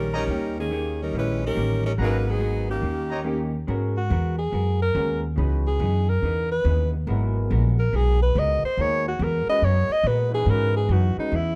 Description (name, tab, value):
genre	jazz, big band swing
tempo	141 BPM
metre	4/4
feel	swing 64% on 8ths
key	G# minor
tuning	A4 = 439 Hz
part	clear saxophone section	melody	0.0-3.5 s	D#3 to B4	-29 LUFS	equal	none
part	vintage hollow-body jazz guitar	accompaniment	0.0-11.6 s	C#3 to A#4	-37 LUFS	equal	none
part	upright bass	bass	0.0-11.6 s	G#1 to A#2	-26 LUFS	equal	none
part	clear trumpet section	stabs	0.1-3.2 s	G4 to A#5	-36 LUFS	equal	none
part	clear concert grand piano	accompaniment	0.3-11.3 s	F#3 to G5	-34 LUFS	equal	none
part	clear alto saxophone	melody	4.0-11.6 s	D#4 to D#5	-27 LUFS	equal	none
part	warm trombone section	sustained chords	6.7-7.7, 10.3-11.1 s	E3 to B4	-38 LUFS	equal	none
room	light reverb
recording	dark, warm production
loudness	-23 LUFS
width	mono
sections	0.0-3.7 A section; 3.7-11.6 B section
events	alto saxophone solo 3.7-11.6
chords	0.0 D#7; 2.0 G#m9; 2.8 D#7; 3.7 G#m9; 5.4 C#m9; 7.1 G#m9; 10.5 C#m9